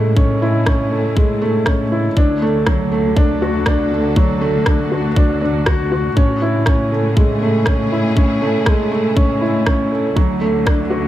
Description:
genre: piano and strings electronica.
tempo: 120 BPM.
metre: 4/4.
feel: straight.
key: A major.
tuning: A4 = 441 Hz.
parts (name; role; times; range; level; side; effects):
clear studio string section; sustained chords; 0.0-11.1 s; C#3 to A4; -30 LUFS; equal; sidechain pumping, shimmer reverb.
felt-muted upright piano; riff; 0.0-11.1 s; F#3 to F#4; -17 LUFS; right 1 dB; tape echo, shimmer reverb.
dark studio cello section; bass; 0.0-11.1 s; D2 to A2; -20 LUFS; left 1 dB; sidechain pumping.
electronic kick drum; drums; 0.2-10.8 s; none; -15 LUFS; equal; small room ambience.
electronic rim click; drums; 0.7-10.8 s; none; -25 LUFS; equal; small room ambience.
room: light reverb, studio reverb.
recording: none.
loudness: -14 LUFS.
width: side -13 dB against mid.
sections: 0.0-11.1 A section.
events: fade-in on string section 0.0-11.1.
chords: 0.0 Amaj7; 2.2 D; 6.2 Amaj7; 10.2 D.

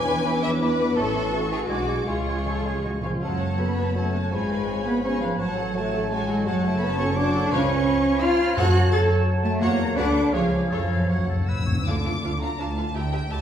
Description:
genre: classical.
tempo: 168 BPM.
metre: 3/4.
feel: rubato.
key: F# minor.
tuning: A4 = 435 Hz.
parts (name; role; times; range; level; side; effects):
warm symphonic violin section; melody; 0.0-13.4 s; C#5 to E6; -36 LUFS; left 3 dB; none.
rich symphonic violin section; second line; 0.0-13.4 s; E#4 to A6; -32 LUFS; left 2 dB; none.
rich symphonic viola section; accompaniment; 0.0-13.4 s; E3 to C#5; -32 LUFS; equal; none.
mellow French horn section; sustained chords; 0.0-11.5 s; E#3 to A4; -29 LUFS; left 2 dB; none.
dark symphonic cello section; bass; 0.0-13.4 s; D3 to A4; -26 LUFS; right 1 dB; none.
rich symphonic double bass section; bass; 0.0-13.4 s; F#1 to F#2; -27 LUFS; equal; none.
clear oboe; second line; 0.1-11.8 s; G#4 to B5; -35 LUFS; right 1 dB; none.
mellow flute section; second line; 0.1-11.7 s; C#5 to D6; -35 LUFS; equal; none.
mellow bassoon; accompaniment; 0.1-11.7 s; C#3 to G#3; -32 LUFS; right 1 dB; none.
timpani; percussion; 2.1-3.2, 7.5-11.8 s; F#2 to C#3; -30 LUFS; left 1 dB; none.
room: wet recital hall reverb, RT60 1.4 s.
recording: heard from further back in the room.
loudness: -21 LUFS.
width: side -9 dB against mid.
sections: 0.0-3.2 A section; 3.2-11.9 B section; 11.9-13.4 A section.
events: timpani fill 2.1-3.2, 10.7-11.9.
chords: 0.0 E7; 1.0 A; 1.7 G#dim/B; 2.1 C#; 3.2 F#m; 4.3 C#7/G#; 5.4 F#m/A; 6.5 F#m; 7.5 C#7; 8.6 F#m; 9.6 F#7/E; 10.0 Bm/D; 10.3 C#; 10.7 F#m; 11.9 Dm.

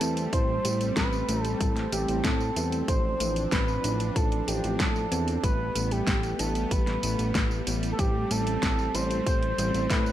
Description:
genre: synthwave.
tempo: 94 BPM.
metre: 4/4.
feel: straight.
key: A minor.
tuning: A4 = 440 Hz.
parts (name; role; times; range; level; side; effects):
expressive synth lead; melody; 0.0-10.1 s; G4 to C5; -31 LUFS; right 1 dB; chorus, tape echo.
soft supersaw; sustained chords; 0.0-10.1 s; F3 to D4; -32 LUFS; right 1 dB; sidechain pumping.
thumb-piano-like synth pluck; arpeggios; 0.0-10.1 s; G3 to A4; -36 LUFS; left 4 dB; chorus, tape echo.
chorused synth bass; bass; 0.0-10.1 s; A1 to A2; -30 LUFS; equal; none.
pop drum kit; drums; 0.0-10.1 s; hi-hat, snare drum, tambourine; -32 LUFS; equal; gated reverb.
electronic kick drum; drums; 0.3-10.0 s; none; -28 LUFS; equal; none.
room: little or no reverb.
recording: none.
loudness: -24 LUFS.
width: side -12 dB against mid.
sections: 0.0-10.1 A section.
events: none.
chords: 0.0 Am7; 2.9 Dm7/A; 5.4 Gadd9/A; 8.0 Am7.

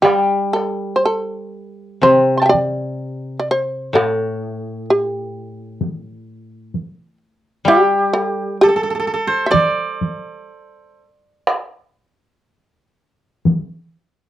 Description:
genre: japanese traditional, Japanese chamber music.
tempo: 63 BPM.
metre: 4/4.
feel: uneven beats, rubato.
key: unclear.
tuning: A4 = 445 Hz.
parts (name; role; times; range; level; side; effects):
shamisen; melody; 0.0-14.3 s; G4 to C6; -16 LUFS; right 1 dB; none.
koto; accompaniment; 0.0-10.5 s; A2 to G3; -21 LUFS; left 2 dB; none.
taiko ensemble; percussion; 0.1-13.7 s; none; -19 LUFS; equal; none.
koto; second line; 7.7-14.3 s; G4 to D5; -19 LUFS; right 4 dB; none.
room: light reverb.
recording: worn, warbling old tape, cassette tape, warbly pitch drift.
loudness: -16 LUFS.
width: side -13 dB against mid.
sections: 0.0-14.3 A section.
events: none.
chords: none.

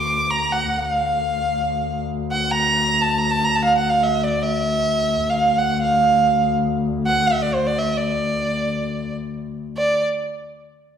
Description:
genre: Arabic maqam ensemble.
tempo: free time.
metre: none.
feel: none.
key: D maqam saba.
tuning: A4 = 443 Hz.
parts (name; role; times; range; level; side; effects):
rich violin; melody; 0.0-10.0 s; C5 to D6; -19 LUFS; right 2 dB; none.
warm double bass; drone; 0.0-9.8 s; D2; -24 LUFS; left 4 dB; none.
room: wet recital hall reverb, RT60 1.5 s.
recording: heard from further back in the room.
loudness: -18 LUFS.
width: side -8 dB against mid.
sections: 0.0-9.8 A section; 9.8-11.0 B section.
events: none.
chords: none.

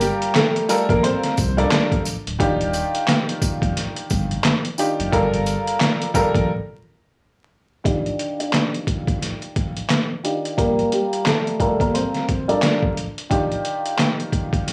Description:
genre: hip hop, boom-bap hip-hop.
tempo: 88 BPM.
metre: 4/4.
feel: swing 60% on 16ths.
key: unclear.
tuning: A4 = 440 Hz.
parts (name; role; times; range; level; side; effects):
clear upright piano; melody; 0.0-1.9, 7.9-12.8 s; G3 to D5; -25 LUFS; equal; high-pass filter, low-pass filter, digital delay.
warm upright piano; accompaniment; 0.0-14.7 s; Eb3 to Bb4; -26 LUFS; equal; high-pass filter, low-pass filter.
sub bass with octave; bass; 0.0-6.5 s; D1 to C2; -27 LUFS; equal; none.
trip hop sampler-style drum kit; drums; 0.0-14.7 s; handclaps, hi-hat, kick drum, snare drum; -24 LUFS; equal; overdrive.
tambourine; percussion; 0.0-6.3 s; none; -34 LUFS; equal; none.
room: light reverb.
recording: vinyl crackle, small room reverb.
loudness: -21 LUFS.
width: mono.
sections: 0.0-7.9 A section; 7.9-14.7 B section.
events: break 6.5-7.9; filter sweep 7.9-14.7.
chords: 0.0 Gm9; 2.4 Ebmaj9; 5.1 Gm9; 7.9 Ebmaj9; 10.6 Gm9; 13.3 Ebmaj9.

